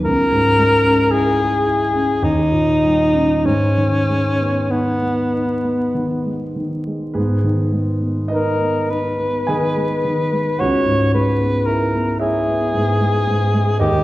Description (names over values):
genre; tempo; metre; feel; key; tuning
classical, romantic duo for alto saxophone and grand piano; 47-57 BPM; 3/4; rubato; G# minor; A4 = 438 Hz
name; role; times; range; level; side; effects
clear alto saxophone; melody; 0.0-14.0 s; B3 to C#5; -18 LUFS; left 1 dB; none
warm concert grand piano; accompaniment; 0.0-14.0 s; C#2 to G#5; -18 LUFS; equal; none
room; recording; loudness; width
wet recital hall reverb, RT60 1.5 s; recorded in a church or concert hall, vinyl crackle; -15 LUFS; side -16 dB against mid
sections
0.0-7.2 A section; 7.2-14.0 A section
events
none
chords
0.0 C#m; 2.2 D#7; 3.5 G#m; 10.6 C#m7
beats
| 0.05 1.12 2.23 | 3.45 4.71 5.95 | 7.17 8.31 9.50 | 10.59 11.67 12.73 | 13.80